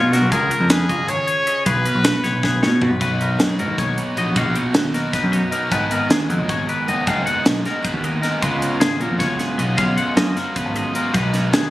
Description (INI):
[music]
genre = math rock and midwest emo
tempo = 310 BPM (eighths)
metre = 7/8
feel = straight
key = B lydian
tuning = A4 = 439 Hz
[part]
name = bright trumpet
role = melody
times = 0.0-2.8 s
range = E#4 to C#5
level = -21 LUFS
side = left 1 dB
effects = digital delay
[part]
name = twelve-string electric guitar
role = accompaniment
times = 0.0-11.7 s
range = G#2 to C#5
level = -27 LUFS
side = right 3 dB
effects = none
[part]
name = twangy electric guitar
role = arpeggios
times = 0.0-11.7 s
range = G#4 to F#5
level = -24 LUFS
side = left 4 dB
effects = none
[part]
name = growling picked electric bass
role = bass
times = 0.0-11.7 s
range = F#1 to B2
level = -21 LUFS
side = equal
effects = overdrive
[part]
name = crisp fusion drum kit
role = drums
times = 0.1-11.6 s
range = hi-hat, kick drum, snare drum, toms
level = -21 LUFS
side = equal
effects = none
[part]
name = overdriven electric guitar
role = riff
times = 3.0-11.7 s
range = G#2 to E#4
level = -25 LUFS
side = equal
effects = none
[sound]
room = light reverb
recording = recorded on a phone in the room, studio reverb, compression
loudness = -17 LUFS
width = side -16 dB against mid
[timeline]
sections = 0.0-3.0 A section; 3.0-11.7 B section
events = drum fill 2.4-3.0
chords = 0.3 C#13; 1.7 G#m9/B; 3.0 Bmaj7; 5.7 G#m7; 8.4 C#7sus4; 11.1 G#m7/B